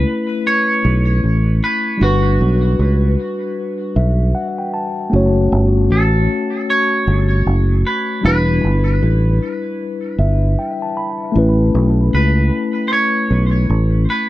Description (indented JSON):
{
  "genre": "lovers rock reggae",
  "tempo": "77 BPM",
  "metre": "4/4",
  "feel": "swing 62% on 16ths",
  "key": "unclear",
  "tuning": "A4 = 440 Hz",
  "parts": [
    { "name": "twangy electric guitar", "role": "melody", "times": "0.0-14.3 s", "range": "F#4 to C#5", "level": "-20 LUFS", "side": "right 2 dB", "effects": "tape echo" },
    { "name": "mellow tine electric piano", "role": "accompaniment", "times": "0.0-14.3 s", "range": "G3 to B5", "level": "-19 LUFS", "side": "left 2 dB", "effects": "slow stereo tremolo, tape echo" },
    { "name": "fingered electric bass", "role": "bass", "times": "0.0-14.1 s", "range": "E1 to C#2", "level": "-14 LUFS", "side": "equal", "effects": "none" }
  ],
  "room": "light reverb",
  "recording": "dry, close 1970s-style studio recording",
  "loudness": "-14 LUFS",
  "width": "side -16 dB against mid",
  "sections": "0.0-14.3 A section",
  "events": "tine electric piano fill 3.6-5.1, 9.8-11.4",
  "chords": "0.0 Aadd9; 2.0 Gmaj7; 5.1 F#m; 8.2 Em7; 11.4 Aadd9",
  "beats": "0.46 1.24 | 2.02 2.79 3.57 4.35 | 5.13 5.91 6.69 7.46 | 8.24 9.02 9.80 10.58 | 11.36 12.14 12.91 13.69"
}